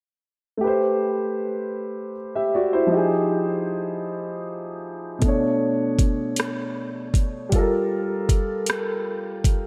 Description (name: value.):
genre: slow six-eight R&B.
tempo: 52 BPM (dotted quarters).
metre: 6/8.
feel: straight.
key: unclear.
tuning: A4 = 440 Hz.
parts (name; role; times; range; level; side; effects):
warm concert grand piano; accompaniment; 0.6-9.7 s; B2 to E5; -25 LUFS; equal; none.
smooth R&B drum kit; drums; 5.2-9.6 s; hi-hat, kick drum, rim click; -24 LUFS; equal; none.
room: wet plate reverb, RT60 3.0 s.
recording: dreamy mix soaked in reverb.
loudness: -24 LUFS.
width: mono.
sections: 0.6-9.7 A section.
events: none.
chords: 0.6 Am9; 2.9 Fm9; 5.2 Bm9; 7.5 Gm9.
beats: | 0.60 1.76 | 2.91 4.07 | 5.22 6.37 | 7.53 8.68.